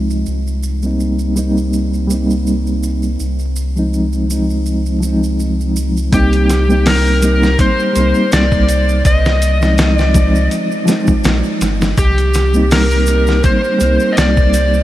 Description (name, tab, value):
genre	trip hop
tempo	82 BPM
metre	4/4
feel	swing 55% on 16ths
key	C minor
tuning	A4 = 443 Hz
part	reed electric piano	accompaniment	0.0-14.8 s	F3 to Eb4	-17 LUFS	equal	fast tremolo, tape echo
part	warm sub bass	bass	0.0-14.8 s	G1 to C2	-16 LUFS	equal	none
part	maracas	percussion	0.1-14.8 s	none	-31 LUFS	right 5 dB	none
part	overdriven slide guitar	melody	6.1-14.8 s	G4 to Eb5	-17 LUFS	left 1 dB	tape echo
part	dusty soul sampler-style drum kit	drums	6.1-14.7 s	hi-hat, kick drum, snare drum	-18 LUFS	equal	studio reverb
room	moderate huge ambient reverb, RT60 7.5 s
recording	dreamy mix soaked in reverb, vinyl crackle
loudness	-12 LUFS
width	side -14 dB against mid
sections	0.0-6.1 A section; 6.1-14.8 B section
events	none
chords	0.3 Cm7; 3.2 Fm7/C; 6.1 Cm7; 9.1 Fm7/C; 12.0 Cm7